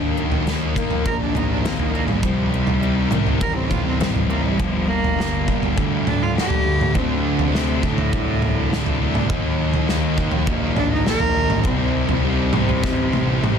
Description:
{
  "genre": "quiet-loud alternative rock",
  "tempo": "102 BPM",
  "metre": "4/4",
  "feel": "straight",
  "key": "unclear",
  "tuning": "A4 = 437 Hz",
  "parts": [
    { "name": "picked steel-string acoustic guitar", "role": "arpeggios", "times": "0.0-4.6 s", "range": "C3 to Eb4", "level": "-29 LUFS", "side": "left 10 dB", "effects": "none" },
    { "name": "thick fuzz guitar", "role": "riff", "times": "0.0-13.6 s", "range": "G2 to Eb4", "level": "-26 LUFS", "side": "left 12 dB", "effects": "distortion" },
    { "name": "thick fuzz guitar", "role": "riff", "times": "0.0-13.6 s", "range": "G2 to Eb4", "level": "-25 LUFS", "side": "right 12 dB", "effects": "distortion" },
    { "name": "fuzz picked electric bass", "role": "bass", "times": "0.0-13.6 s", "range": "G1 to Eb2", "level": "-26 LUFS", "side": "equal", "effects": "overdrive" },
    { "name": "loose indie drum kit", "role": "drums", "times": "0.3-13.6 s", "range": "kick drum, snare drum, toms", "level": "-22 LUFS", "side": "equal", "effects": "none" },
    { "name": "rich cello", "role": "melody", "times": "1.1-13.6 s", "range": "A2 to Bb4", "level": "-24 LUFS", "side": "equal", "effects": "digital delay" }
  ],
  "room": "light reverb, small room ambience",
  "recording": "dense, heavily limited modern master",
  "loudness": "-18 LUFS",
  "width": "side -7 dB against mid",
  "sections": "0.0-13.6 A section",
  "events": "cello solo 0.0-13.6; drum fill 12.8-13.6",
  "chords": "0.0 Ebm; 2.2 Cm; 4.6 Gm; 7.0 D; 9.3 Ebm; 11.7 Cm"
}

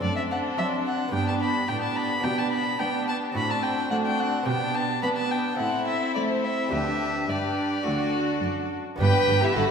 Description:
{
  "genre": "classical, baroque-style concerto movement with solo episodes",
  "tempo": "107 BPM",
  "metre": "4/4",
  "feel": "straight",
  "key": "G major",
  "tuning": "A4 = 439 Hz",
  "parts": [
    { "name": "dark violin", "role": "melody", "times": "0.0-9.7 s", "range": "G4 to B5", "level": "-28 LUFS", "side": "equal", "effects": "none" },
    { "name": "rich chamber violin section", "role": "melody", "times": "0.0-9.7 s", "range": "F#4 to G5", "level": "-35 LUFS", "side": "left 5 dB", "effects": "none" },
    { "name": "warm chamber violin section", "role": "second line", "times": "0.0-9.7 s", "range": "D4 to G4", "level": "-30 LUFS", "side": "left 1 dB", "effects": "none" },
    { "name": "dark chamber viola section", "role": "accompaniment", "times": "0.0-9.7 s", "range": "B3 to D4", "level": "-30 LUFS", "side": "right 1 dB", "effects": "none" },
    { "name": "lute", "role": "accompaniment", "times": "0.0-9.7 s", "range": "D2 to B4", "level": "-36 LUFS", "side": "equal", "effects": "none" },
    { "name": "warm chamber cello section", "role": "bass", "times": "0.0-9.7 s", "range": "D2 to B3", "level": "-30 LUFS", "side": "right 3 dB", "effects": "none" },
    { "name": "rich chamber double bass section", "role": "bass", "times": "9.0-9.6 s", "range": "G1", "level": "-26 LUFS", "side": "right 4 dB", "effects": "none" }
  ],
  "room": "wet concert hall reverb, RT60 1.8 s",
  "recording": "none",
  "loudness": "-23 LUFS",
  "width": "side -6 dB against mid",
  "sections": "0.0-9.0 A section",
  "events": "none",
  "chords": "0.0 D7/F#; 1.1 G; 2.2 G/B; 3.4 D7/A; 4.5 G/B; 5.6 Am; 6.7 G/D; 7.9 D; 9.0 G"
}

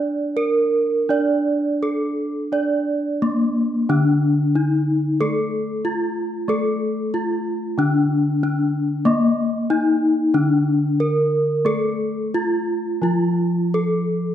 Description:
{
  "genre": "gamelan",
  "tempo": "91 BPM",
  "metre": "4/4",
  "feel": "uneven beats",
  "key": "D pelog",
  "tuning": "A4 = 438 Hz",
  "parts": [
    { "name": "gamelan-type bronze metallophone", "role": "melody", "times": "0.0-14.3 s", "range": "Bb3 to D5", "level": "-20 LUFS", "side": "equal", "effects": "none" },
    { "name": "gamelan-type bronze metallophone", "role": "accompaniment", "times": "0.0-14.3 s", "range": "D3 to D4", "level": "-22 LUFS", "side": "equal", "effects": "none" }
  ],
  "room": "wet recital hall reverb, RT60 1.3 s",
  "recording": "none",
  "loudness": "-18 LUFS",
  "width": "side -10 dB against mid",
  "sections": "0.0-5.2 A section; 5.2-14.3 B section",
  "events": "none",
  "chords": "none"
}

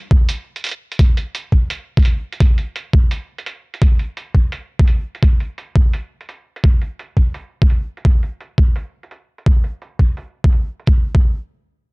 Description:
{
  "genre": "drum and bass",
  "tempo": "170 BPM",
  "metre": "4/4",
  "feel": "swing 55% on 16ths, half-time",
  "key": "none",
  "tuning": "none",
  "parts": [
    { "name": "electronic kick drum", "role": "drums", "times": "0.1-11.2 s", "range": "none", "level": "-12 LUFS", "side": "equal", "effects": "none" },
    { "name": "electronic hi-hat", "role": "drums", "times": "0.3-10.9 s", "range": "none", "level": "-29 LUFS", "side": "right 3 dB", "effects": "low-pass filter on snare, low-pass filter on hats, low-pass filter on perc" }
  ],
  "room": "digital ambience",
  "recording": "none",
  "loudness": "-15 LUFS",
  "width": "side -36 dB against mid",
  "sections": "0.0-10.9 A section; 10.9-11.9 B section",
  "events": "filter sweep on drum 0.0-10.9",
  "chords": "none"
}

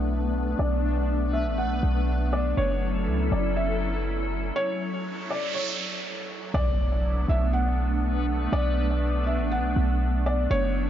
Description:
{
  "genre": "hip hop",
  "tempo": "121 BPM",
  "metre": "4/4",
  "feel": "half-time",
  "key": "B minor",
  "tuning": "A4 = 440 Hz",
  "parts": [
    { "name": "felt-muted upright piano", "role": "melody", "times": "0.0-10.9 s", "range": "C#5 to F#5", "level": "-31 LUFS", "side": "left 1 dB", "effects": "low-pass filter, ping-pong delay" },
    { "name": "glassy FM pad", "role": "sustained chords", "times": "0.0-10.9 s", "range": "F#3 to A4", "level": "-30 LUFS", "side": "left 1 dB", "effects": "ensemble chorus, built-in reverb, low-pass filter" },
    { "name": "warm 808-style bass", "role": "bass", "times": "0.0-10.9 s", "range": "F#1 to C#2", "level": "-25 LUFS", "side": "equal", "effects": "none" },
    { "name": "backwards swelling texture", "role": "texture", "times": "0.0-10.9 s", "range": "F#3 to B4", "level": "-37 LUFS", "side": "right 1 dB", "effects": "built-in reverb" },
    { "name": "noise sweep and impact", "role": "sound effects", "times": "5.0-8.5 s", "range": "none", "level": "-35 LUFS", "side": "right 2 dB", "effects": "none" }
  ],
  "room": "light reverb, digital ambience",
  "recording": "nothing above 7.5 kHz",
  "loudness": "-23 LUFS",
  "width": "side -10 dB against mid",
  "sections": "0.0-6.5 A section; 6.5-10.9 B section",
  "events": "filter sweep 0.0-6.5; stop 4.6-6.5; noise sweep 5.0-6.5; impact 6.5-8.5",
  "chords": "0.0 Bm7; 2.6 F#m7; 6.5 Bm7"
}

